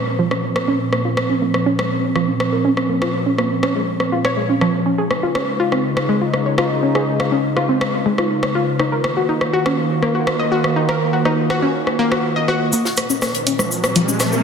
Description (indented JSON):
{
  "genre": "melodic techno",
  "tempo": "122 BPM",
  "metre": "4/4",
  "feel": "straight",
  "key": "Bb minor",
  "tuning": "A4 = 441 Hz",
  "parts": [
    { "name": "sweeping resonant pad", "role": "sustained chords", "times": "0.0-14.4 s", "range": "Bb2 to F4", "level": "-21 LUFS", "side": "right 1 dB", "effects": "chorus" },
    { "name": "analog pluck", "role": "arpeggios", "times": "0.2-14.4 s", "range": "F3 to Eb5", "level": "-20 LUFS", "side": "left 1 dB", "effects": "chorus, cassette tape, dub echo" },
    { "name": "punchy analog drum machine", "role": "drums", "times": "0.3-14.3 s", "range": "hi-hat, rim click", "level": "-21 LUFS", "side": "equal", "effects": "soft clipping on snare" },
    { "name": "tight funk drum kit", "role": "drums", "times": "12.7-14.3 s", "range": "hi-hat, shaker, snare drum", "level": "-25 LUFS", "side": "left 1 dB", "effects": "high-pass filter on hats, high-pass filter on snare, high-pass filter on perc, high-pass filter on room" },
    { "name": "cabasa", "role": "percussion", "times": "12.7-14.4 s", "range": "none", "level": "-26 LUFS", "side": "left 3 dB", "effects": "none" },
    { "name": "riser", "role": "sound effects", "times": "13.3-14.4 s", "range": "none", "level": "-25 LUFS", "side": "right 2 dB", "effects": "none" }
  ],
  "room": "wet lush hall reverb, RT60 2.0 s",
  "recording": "dense, heavily limited modern master",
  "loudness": "-16 LUFS",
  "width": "side -6 dB against mid",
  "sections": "0.0-12.7 A section; 12.7-14.4 B section",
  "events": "filter sweep on synth pluck 0.0-12.7, 12.7-14.4; filter sweep on analog synth pad 0.0-12.7, 12.7-14.4; build-up 12.7-14.4; riser 13.3-14.4",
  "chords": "0.0 Bbm; 4.9 Dbadd9; 8.8 Ebm; 12.7 Bb5"
}